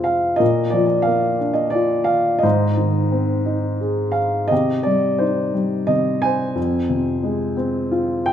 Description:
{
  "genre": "classical, lyrical solo piano",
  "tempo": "88 BPM",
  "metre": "3/4",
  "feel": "rubato",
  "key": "C minor",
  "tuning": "A4 = 437 Hz",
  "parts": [
    { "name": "dark baby grand piano", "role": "solo", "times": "0.0-8.3 s", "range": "F2 to Ab5", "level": "-17 LUFS", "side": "equal", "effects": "none" }
  ],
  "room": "moderate recital hall reverb, RT60 1.7 s",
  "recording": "minimal, uncompressed stereo recording",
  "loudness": "-17 LUFS",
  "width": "side -9 dB against mid",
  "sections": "0.0-8.3 A section",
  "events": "none",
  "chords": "0.4 Bb; 2.4 Ab; 4.5 Cm; 6.6 Fm",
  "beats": "| 0.41 1.08 1.76 | 2.44 3.12 3.81 | 4.52 5.21 5.89 | 6.57 7.25 7.92"
}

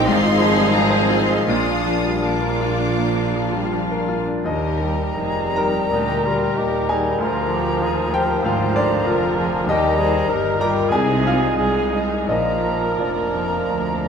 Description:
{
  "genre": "classical",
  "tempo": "75-98 BPM",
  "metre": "4/4",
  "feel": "rubato",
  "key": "unclear",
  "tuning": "A4 = 440 Hz",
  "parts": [
    { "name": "clear grand piano", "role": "melody", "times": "0.0-14.1 s", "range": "Bb1 to Bb5", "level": "-21 LUFS", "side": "left 2 dB", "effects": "none" },
    { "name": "rich studio violin section", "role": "melody", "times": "0.0-14.1 s", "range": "Bb4 to Eb6", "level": "-33 LUFS", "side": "left 2 dB", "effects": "none" },
    { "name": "warm studio violin section", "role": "second line", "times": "0.0-14.1 s", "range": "F4 to F5", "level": "-28 LUFS", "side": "left 4 dB", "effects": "none" },
    { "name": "warm studio viola section", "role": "accompaniment", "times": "0.0-14.1 s", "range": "Bb3 to G4", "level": "-28 LUFS", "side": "right 2 dB", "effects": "none" },
    { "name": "rich studio cello section", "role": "bass", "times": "0.0-14.1 s", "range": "C2 to Ab4", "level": "-28 LUFS", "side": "right 4 dB", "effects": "none" },
    { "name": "warm studio double bass section", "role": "bass", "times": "0.0-14.1 s", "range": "F1 to Eb2", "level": "-28 LUFS", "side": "right 4 dB", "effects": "none" },
    { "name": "warm tuba", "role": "bass", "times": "0.0-4.2 s", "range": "Ab1 to Bb1", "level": "-27 LUFS", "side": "right 5 dB", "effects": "none" },
    { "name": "bright silver concert flute", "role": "second line", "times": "4.5-14.1 s", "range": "Ab5 to Bb5", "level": "-28 LUFS", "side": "right 1 dB", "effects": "none" },
    { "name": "clear bassoon", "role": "accompaniment", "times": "4.5-14.1 s", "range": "F3 to Ab3", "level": "-27 LUFS", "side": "right 2 dB", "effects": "none" },
    { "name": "mellow French horn section", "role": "sustained chords", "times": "4.5-14.1 s", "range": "F3 to Bb4", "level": "-27 LUFS", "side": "left 3 dB", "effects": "none" },
    { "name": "warm cor anglais", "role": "second line", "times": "5.9-14.1 s", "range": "Eb4 to C5", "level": "-28 LUFS", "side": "right 2 dB", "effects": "none" }
  ],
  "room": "moderate scoring stage reverb, RT60 1.9 s",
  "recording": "minimal, uncompressed stereo recording, faint mains hum",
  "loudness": "-17 LUFS",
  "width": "side -6 dB against mid",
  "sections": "0.0-4.5 A section; 4.5-14.1 B section",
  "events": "none",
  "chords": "0.1 Fm7/Ab; 1.5 Bb; 4.5 Bb7; 9.7 Eb; 10.9 Ab/C; 12.3 Bb",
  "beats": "0.07 0.75 | 1.48 2.24 2.98 3.72 | 4.45 5.17 5.91 6.57 | 7.20 7.82 8.44 9.06 | 9.68 10.29 10.92 11.58 | 12.28 12.99 13.69"
}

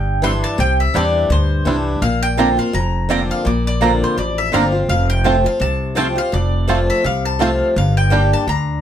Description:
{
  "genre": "bluegrass",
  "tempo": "167 BPM",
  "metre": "4/4",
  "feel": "swing 56% on 8ths",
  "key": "unclear",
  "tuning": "A4 = 441 Hz",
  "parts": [
    { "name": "mandolin", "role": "melody", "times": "0.0-8.8 s", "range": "C5 to C6", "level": "-21 LUFS", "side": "equal", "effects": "none" },
    { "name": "picked swing-style acoustic guitar", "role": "accompaniment", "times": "0.0-8.8 s", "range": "F2 to G4", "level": "-20 LUFS", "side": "left 2 dB", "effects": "none" },
    { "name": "upright bass", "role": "bass", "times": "0.0-8.8 s", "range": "F1 to E2", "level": "-18 LUFS", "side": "equal", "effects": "none" },
    { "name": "bluegrass banjo", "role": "melody", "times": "0.2-8.2 s", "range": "G3 to F4", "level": "-20 LUFS", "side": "right 3 dB", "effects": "none" },
    { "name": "mandolin", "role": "stabs", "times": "2.4-8.2 s", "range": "Bb3 to Bb5", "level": "-20 LUFS", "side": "right 6 dB", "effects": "none" }
  ],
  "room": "light reverb",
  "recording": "dark, warm production",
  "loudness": "-14 LUFS",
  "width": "side -10 dB against mid",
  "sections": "0.0-8.8 A section",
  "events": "none",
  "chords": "0.0 Cadd9; 2.0 Bbadd9; 4.9 F; 7.8 Gm",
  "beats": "0.23 | 0.59 0.95 1.31 1.67 | 2.02 2.38 2.74 3.10 | 3.46 3.82 4.17 4.53 | 4.89 5.25 5.61 5.97 | 6.33 6.68 7.04 7.40 | 7.76 8.12 8.48"
}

